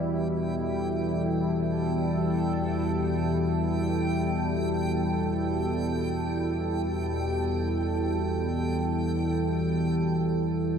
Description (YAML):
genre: dark ambient drone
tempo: free time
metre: none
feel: none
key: E minor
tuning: A4 = 440 Hz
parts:
  - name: sweeping resonant pad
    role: sustained chords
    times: 0.0-10.8 s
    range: B2 to A4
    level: -28 LUFS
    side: equal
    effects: chorus
  - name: deep rumbling drone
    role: drone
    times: 0.0-10.8 s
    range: E2 to E3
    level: -29 LUFS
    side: equal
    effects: built-in reverb
  - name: backwards swelling texture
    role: texture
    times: 0.2-10.8 s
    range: G5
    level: -38 LUFS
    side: right 1 dB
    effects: built-in reverb
room: wet cathedral reverb, RT60 6.9 s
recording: dark, warm production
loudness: -25 LUFS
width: side -7 dB against mid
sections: 0.0-10.8 A section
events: none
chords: 0.0 Em